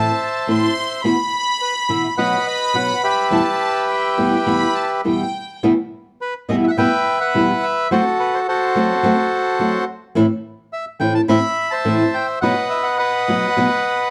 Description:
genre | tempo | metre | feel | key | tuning
tango | 106 BPM | 4/4 | rubato | E harmonic minor | A4 = 440 Hz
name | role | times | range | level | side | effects
bandoneon | melody | 0.0-14.1 s | F#4 to B5 | -21 LUFS | equal | none
warm studio violin section | second line | 0.0-5.6 s | G5 to C6 | -24 LUFS | equal | none
flamenco guitar | accompaniment | 0.0-13.7 s | E2 to F#4 | -20 LUFS | equal | none
room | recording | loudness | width
moderate studio reverb, RT60 0.9 s | none | -18 LUFS | mono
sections
0.0-5.6 A section; 5.6-14.1 B section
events
none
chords
0.0 Am; 1.0 Bsus4; 2.2 B; 3.3 Em; 7.9 F#dim; 10.2 Am; 12.4 B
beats
0.48 | 1.05 1.61 2.18 2.74 | 3.31 3.89 4.46 5.05 | 5.63 6.20 6.78 7.34 | 7.91 8.48 9.04 9.60 | 10.16 10.72 11.29 11.86 | 12.43 12.99 13.57

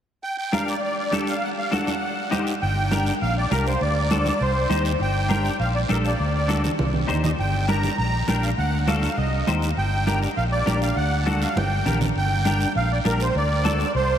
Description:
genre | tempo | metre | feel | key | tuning
latin, cumbia | 201 BPM | 4/4 | straight | G harmonic minor | A4 = 439 Hz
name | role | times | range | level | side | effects
musette accordion | melody | 0.2-14.2 s | Bb4 to Bb5 | -25 LUFS | right 1 dB | analog delay
guiro | percussion | 0.2-14.2 s | none | -37 LUFS | right 6 dB | none
clean electric guitar | accompaniment | 0.5-13.9 s | D4 to C5 | -28 LUFS | left 2 dB | ensemble chorus
congas | percussion | 0.5-13.8 s | none | -28 LUFS | right 2 dB | none
fingered electric bass | bass | 2.6-14.2 s | G1 to Eb2 | -24 LUFS | equal | none
room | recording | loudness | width
wet huge ambient reverb, RT60 7.5 s | dreamy mix soaked in reverb | -20 LUFS | side -9 dB against mid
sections
0.2-2.6 A section; 2.6-12.2 B section; 12.2-14.2 B section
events
drum fill 6.5-7.4, 11.6-12.2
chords
0.2 Gm; 1.4 D; 2.0 Cm; 2.6 Gm; 3.8 D; 4.4 Cm; 5.0 Gm; 6.2 D; 6.8 Cm; 7.4 Gm; 8.6 D; 9.2 Cm; 9.8 Gm; 11.0 D; 11.6 Gm; 13.4 D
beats
| 0.23 0.53 0.83 1.13 | 1.43 1.72 2.02 2.32 | 2.62 2.92 3.21 3.51 | 3.81 4.11 4.41 4.70 | 5.00 5.30 5.60 5.90 | 6.20 6.49 6.79 7.09 | 7.39 7.69 7.99 8.28 | 8.58 8.88 9.18 9.48 | 9.78 10.07 10.37 10.67 | 10.97 11.27 11.56 11.86 | 12.16 12.46 12.76 13.06 | 13.35 13.65 13.95

